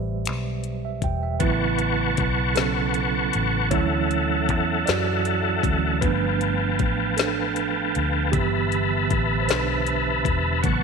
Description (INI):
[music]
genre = slow six-eight R&B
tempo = 52 BPM (dotted quarters)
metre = 6/8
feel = straight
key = A major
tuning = A4 = 440 Hz
[part]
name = mellow tine electric piano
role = accompaniment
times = 0.0-10.8 s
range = C#3 to G5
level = -26 LUFS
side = right 12 dB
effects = medium stereo tremolo
[part]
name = vintage muted fingered electric bass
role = bass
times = 0.0-10.8 s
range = E1 to F#2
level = -26 LUFS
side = left 2 dB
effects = none
[part]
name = smooth R&B drum kit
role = drums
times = 0.3-10.8 s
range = finger snaps, hi-hat, kick drum, snare drum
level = -26 LUFS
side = left 5 dB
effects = none
[part]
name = tonewheel organ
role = sustained chords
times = 1.4-10.8 s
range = A4 to C#6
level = -24 LUFS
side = left 2 dB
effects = chorus vibrato, fast rotary speaker
[sound]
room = moderate echo chamber reverb, RT60 1.8 s, digital ambience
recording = 1960s-style stereo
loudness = -20 LUFS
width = side -5 dB against mid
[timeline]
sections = 0.0-1.4 A section; 1.4-10.8 B section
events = tine electric piano solo 1.4-10.8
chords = 0.0 Cmaj9; 1.4 A69; 3.7 Dmaj9; 6.0 G7; 8.3 Am11